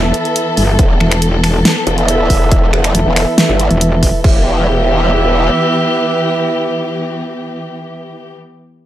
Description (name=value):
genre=heavy wobble dubstep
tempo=139 BPM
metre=4/4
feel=half-time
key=E minor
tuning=A4 = 440 Hz
part: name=dark studio string section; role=sustained chords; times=0.0-8.3 s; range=E3 to A4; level=-18 LUFS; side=left 3 dB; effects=sidechain pumping
part: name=dark brass ensemble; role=stabs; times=0.0-8.3 s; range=E4 to E5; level=-18 LUFS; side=right 4 dB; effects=digital delay
part: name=metallic wobble bass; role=bass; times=0.0-4.1 s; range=E1 to G1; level=-13 LUFS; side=equal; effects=chorus, overdrive
part: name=big-room dance drum kit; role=drums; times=0.1-4.1 s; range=finger snaps, hi-hat, snare drum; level=-16 LUFS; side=equal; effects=none
part: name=growl bass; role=bass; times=0.8-5.5 s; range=E1 to G1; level=-14 LUFS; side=equal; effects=chorus, overdrive
part: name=big-room dance drum kit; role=drums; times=0.8-4.3 s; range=crash cymbal, kick drum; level=-12 LUFS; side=equal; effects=none
room=little or no reverb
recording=none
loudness=-10 LUFS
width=side -12 dB against mid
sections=0.0-4.2 A section; 4.2-7.7 B section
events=drop 0.0-4.2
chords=0.0 E5; 4.2 Em